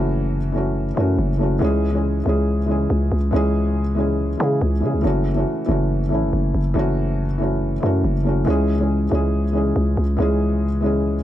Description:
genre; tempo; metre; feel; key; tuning
hip hop, drill; 140 BPM; 4/4; half-time; F# minor; A4 = 441 Hz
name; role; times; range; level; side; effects
felt-muted upright piano; accompaniment; 0.0-11.2 s; E3 to G#4; -22 LUFS; equal; none
growling 808-style bass; bass; 0.0-11.2 s; F#1 to C#3; -20 LUFS; equal; none
room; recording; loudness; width
studio ambience; nothing above 10.7 kHz; -18 LUFS; side -12 dB against mid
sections
0.0-11.2 A section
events
none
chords
0.0 F#m7; 1.6 C#m; 5.0 F#m7; 8.5 C#m

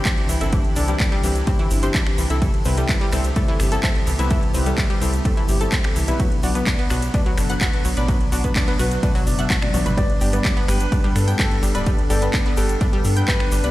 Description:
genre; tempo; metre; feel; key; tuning
progressive house; 127 BPM; 4/4; straight; G major; A4 = 439 Hz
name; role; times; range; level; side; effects
evolving wavetable pad; sustained chords; 0.0-13.7 s; C3 to G4; -32 LUFS; equal; chorus, built-in reverb, sidechain pumping
deep mellow chord stab; stabs; 0.0-13.7 s; G2 to E5; -26 LUFS; left 2 dB; chorus, sidechain pumping, digital delay
analog pluck; arpeggios; 0.1-13.7 s; E3 to G5; -28 LUFS; equal; chorus, sidechain pumping, digital delay
electronic kick drum; drums; 0.1-13.4 s; none; -21 LUFS; equal; overdrive
house drum kit; drums; 0.1-13.7 s; finger snaps, handclaps, hi-hat, ride cymbal, toms; -27 LUFS; equal; overdrive, sidechain pumping on hats, sidechain pumping on cymbals, sidechain pumping on toms
egg shaker; percussion; 0.1-13.7 s; none; -37 LUFS; left 3 dB; none
round analog bass; bass; 0.3-13.7 s; D1 to G2; -21 LUFS; equal; sidechain pumping
clear grand piano; melody; 10.0-13.7 s; A4 to D5; -29 LUFS; left 1 dB; digital delay
airy dreamy lead; second line; 10.0-13.7 s; A4 to D5; -33 LUFS; right 1 dB; none
room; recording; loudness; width
light reverb, digital ambience; played on a big sound system in a bare room, stone room reverb; -17 LUFS; side -16 dB against mid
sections
0.0-13.7 A section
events
drum fill 9.5-10.0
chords
0.0 Cadd9; 2.4 Am7; 6.2 Bm; 10.0 G

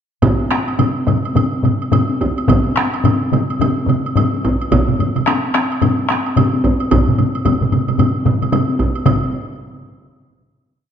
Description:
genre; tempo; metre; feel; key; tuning
japanese traditional, taiko drum ensemble; 109 BPM; 4/4; swing 60% on 16ths; none; none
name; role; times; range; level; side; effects
solo taiko drums; percussion; 0.2-9.3 s; none; -19 LUFS; left 4 dB; none
taiko ensemble; percussion; 0.2-9.5 s; none; -20 LUFS; left 4 dB; none
taiko ensemble; percussion; 0.2-9.5 s; none; -20 LUFS; right 6 dB; none
taiko ensemble; percussion; 0.2-9.3 s; none; -19 LUFS; right 2 dB; none
woodblock; percussion; 0.2-9.3 s; none; -26 LUFS; right 4 dB; none
room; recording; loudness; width
wet recital hall reverb, RT60 1.7 s; dark, warm production; -14 LUFS; side -8 dB against mid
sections
0.2-9.1 A section; 9.1-10.9 final hit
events
speeding up 0.2-10.9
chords
none

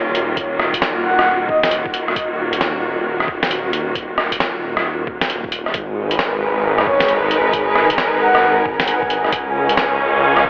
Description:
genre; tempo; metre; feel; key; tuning
future garage; 134 BPM; 4/4; swing 64% on 16ths; G# dorian; A4 = 440 Hz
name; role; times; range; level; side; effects
warm symphonic string section; sustained chords; 0.0-10.5 s; D#3 to E#5; -22 LUFS; equal; sidechain pumping
swelling detuned saw bass; bass; 0.0-10.5 s; D#1 to C#2; -26 LUFS; equal; sidechain pumping
lo-fi sampler-style drum kit; drums; 0.1-10.4 s; hi-hat, rim click, snare drum; -22 LUFS; equal; none
electronic kick drum; drums; 0.4-10.5 s; none; -33 LUFS; equal; none
breathy flute-like synth lead; melody; 1.0-1.7, 6.9-8.6 s; C#5 to F#5; -23 LUFS; equal; subtle chorus, tape echo
flickering grainy texture; texture; 6.1-10.5 s; G#5; -27 LUFS; equal; built-in reverb
room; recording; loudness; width
wet lush hall reverb, RT60 2.4 s; vinyl crackle, telephone sound; -18 LUFS; mono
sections
0.0-10.5 A section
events
none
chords
0.0 D#m; 5.7 G#m7; 9.3 C#7

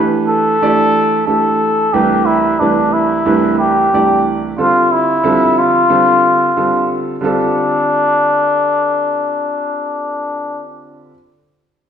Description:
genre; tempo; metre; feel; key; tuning
jazz; 91 BPM; 4/4; swing 55% on 16ths; D dorian; A4 = 438 Hz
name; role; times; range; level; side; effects
warm grand piano; accompaniment; 0.0-11.1 s; C2 to D5; -16 LUFS; right 3 dB; none
trumpet with cup mute; melody; 0.3-10.6 s; D4 to A4; -13 LUFS; left 1 dB; none
room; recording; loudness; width
wet large studio reverb, RT60 1.3 s; band playing live in one room; -12 LUFS; side -8 dB against mid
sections
0.0-7.2 A section; 7.2-9.9 B section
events
none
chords
0.0 Gadd9; 1.9 Cmaj9; 4.6 Dm7

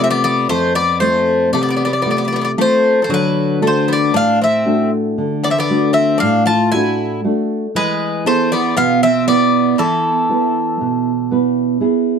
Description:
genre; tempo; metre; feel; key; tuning
greek folk, Greek bouzouki band; 116 BPM (eighths); 9/8; straight; unclear; A4 = 440 Hz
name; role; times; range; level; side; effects
Greek bouzouki; melody; 0.0-11.8 s; A4 to A5; -16 LUFS; left 1 dB; none
Greek bouzouki; second line; 0.0-11.8 s; E3 to F4; -22 LUFS; left 3 dB; none
nylon-string guitar; accompaniment; 0.0-12.2 s; F2 to B4; -16 LUFS; right 2 dB; none
room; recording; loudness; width
moderate small room reverb, RT60 0.6 s; dark, warm production; -13 LUFS; side -6 dB against mid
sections
0.0-12.2 A section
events
speeding up 0.0-12.2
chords
0.0 F; 3.1 D; 7.7 E

